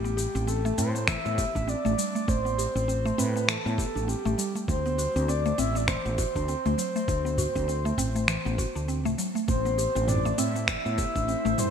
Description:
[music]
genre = organic downtempo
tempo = 100 BPM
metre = 4/4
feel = swing 58% on 16ths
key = A dorian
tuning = A4 = 440 Hz
[part]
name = breathy flute-like synth lead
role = melody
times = 0.0-11.7 s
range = G4 to E5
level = -30 LUFS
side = equal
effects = wide subtle chorus, ping-pong delay
[part]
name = mallet-like synth pluck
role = arpeggios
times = 0.0-11.7 s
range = E3 to G4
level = -31 LUFS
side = equal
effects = chorus, phaser
[part]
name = woody fretless electric bass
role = bass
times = 0.0-11.5 s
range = A1 to A2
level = -29 LUFS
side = equal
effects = none
[part]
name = organic electronic drum kit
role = drums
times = 0.1-11.7 s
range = finger snaps, shaker, toms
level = -31 LUFS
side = left 1 dB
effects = gated reverb
[part]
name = udu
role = percussion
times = 0.8-10.5 s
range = none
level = -34 LUFS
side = right 1 dB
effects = none
[part]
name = electronic kick drum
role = drums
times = 1.1-11.3 s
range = none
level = -30 LUFS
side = equal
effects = overdrive
[part]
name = bowed-like drone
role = sustained chords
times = 10.4-11.7 s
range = A3 to C5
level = -36 LUFS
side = equal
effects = built-in reverb, sidechain pumping
[sound]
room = moderate lush hall reverb, RT60 2.0 s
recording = bright 1980s-style digital production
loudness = -24 LUFS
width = side -7 dB against mid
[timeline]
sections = 0.0-11.7 A section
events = none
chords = 0.0 Am7; 4.7 D7; 9.5 Am7

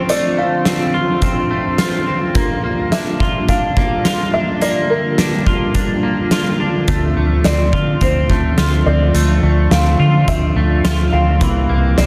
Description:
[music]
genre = dream pop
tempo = 106 BPM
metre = 4/4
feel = straight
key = D minor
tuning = A4 = 441 Hz
[part]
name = felt-muted upright piano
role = melody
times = 0.0-12.1 s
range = Bb4 to F5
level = -24 LUFS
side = equal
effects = shimmer reverb, tape echo
[part]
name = ensemble organ-string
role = sustained chords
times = 0.0-12.1 s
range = D3 to G4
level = -22 LUFS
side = equal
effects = ensemble chorus, shimmer reverb
[part]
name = clean electric guitar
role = arpeggios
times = 0.0-12.1 s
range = E3 to F4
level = -24 LUFS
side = equal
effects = lush chorus, shimmer reverb, tape echo
[part]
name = oversized low-tuned drum kit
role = drums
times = 0.1-12.1 s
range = hi-hat, kick drum, snare drum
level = -21 LUFS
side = equal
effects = none
[part]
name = vintage muted fingered electric bass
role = bass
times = 6.9-12.1 s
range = C2 to D3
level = -17 LUFS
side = equal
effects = none
[sound]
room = moderate echo chamber reverb, RT60 2.3 s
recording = dense, heavily limited modern master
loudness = -16 LUFS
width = mono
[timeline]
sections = 0.0-12.1 A section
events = none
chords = 0.0 Dm7; 2.4 Gm7; 6.9 Dm7; 11.4 C7

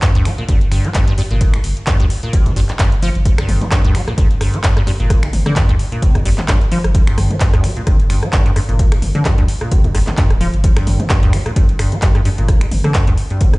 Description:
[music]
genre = acid house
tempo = 130 BPM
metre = 4/4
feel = swing 55% on 16ths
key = G minor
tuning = A4 = 435 Hz
[part]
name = liquid acid bass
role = riff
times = 0.0-13.6 s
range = G1 to G3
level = -18 LUFS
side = equal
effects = chorus, sidechain pumping, tape echo
[part]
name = electro analog drum machine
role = drums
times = 0.0-13.6 s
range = finger snaps, handclaps, hi-hat, rim click, toms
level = -22 LUFS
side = equal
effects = none
[part]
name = electronic kick drum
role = drums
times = 0.0-13.6 s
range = none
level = -15 LUFS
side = equal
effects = none
[part]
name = saturated sub bass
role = bass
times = 0.2-13.6 s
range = D1 to D2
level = -18 LUFS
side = equal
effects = sidechain pumping
[sound]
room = light reverb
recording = played on a big sound system in a bare room, stone room reverb, nothing above 10.7 kHz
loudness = -12 LUFS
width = side -23 dB against mid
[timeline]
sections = 0.0-13.6 A section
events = filter sweep on acid bass 0.0-13.6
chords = none

